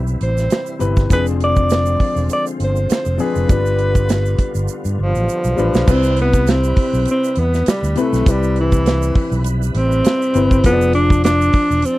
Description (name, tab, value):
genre	lush 1970s-style soul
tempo	101 BPM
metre	4/4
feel	swing 54% on 16ths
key	C major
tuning	A4 = 442 Hz
part	breathy alto saxophone	melody	0.0-12.0 s	E3 to D5	-18 LUFS	equal	none
part	warm grand piano	accompaniment	0.0-12.0 s	C3 to D5	-22 LUFS	left 5 dB	none
part	bright tonewheel organ	sustained chords	0.0-12.0 s	D3 to B4	-30 LUFS	right 2 dB	overdrive, chorus vibrato, slow rotary speaker
part	fingered electric bass	bass	0.0-11.8 s	E1 to G2	-18 LUFS	equal	none
part	egg shaker	percussion	0.1-12.0 s	none	-36 LUFS	right 26 dB	none
part	modern studio drum kit	drums	0.2-12.0 s	crash cymbal, hi-hat, kick drum, snare drum	-16 LUFS	right 1 dB	none
room	little or no reverb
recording	dry, close 1970s-style studio recording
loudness	-14 LUFS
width	side -17 dB against mid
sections	0.0-5.9 A section; 5.9-12.0 A section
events	drum fill 4.7-5.9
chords	0.0 Cmaj7; 1.1 Fm6; 3.5 G7; 5.9 Cmaj7; 10.6 Fm6